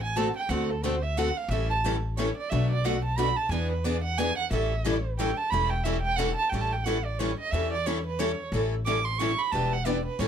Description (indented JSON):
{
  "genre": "acoustic string swing (jazz manouche)",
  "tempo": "179 BPM",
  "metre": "3/4",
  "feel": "swing 60% on 8ths",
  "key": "A mixolydian",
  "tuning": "A4 = 440 Hz",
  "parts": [
    { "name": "dark violin", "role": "second line", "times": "0.0-10.3 s", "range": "A4 to D6", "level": "-29 LUFS", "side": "right 5 dB", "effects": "none" },
    { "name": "upright bass", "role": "bass", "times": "0.0-10.3 s", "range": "E1 to E2", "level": "-30 LUFS", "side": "left 1 dB", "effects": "none" },
    { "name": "picked steel-string acoustic guitar", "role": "accompaniment", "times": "0.2-10.3 s", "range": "B2 to A4", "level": "-30 LUFS", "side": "left 4 dB", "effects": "none" },
    { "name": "picked steel-string acoustic guitar", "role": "accompaniment", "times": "0.2-10.3 s", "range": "B2 to B4", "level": "-36 LUFS", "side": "right 6 dB", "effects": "none" }
  ],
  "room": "light reverb",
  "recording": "close, detailed microphones",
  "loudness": "-25 LUFS",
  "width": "side -8 dB against mid",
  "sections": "0.0-6.5 A section; 6.5-10.3 A section",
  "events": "violin solo 0.0-10.3",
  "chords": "0.0 D7; 1.5 A7; 2.5 Bm7; 3.5 E7; 4.5 A7; 9.5 Em7"
}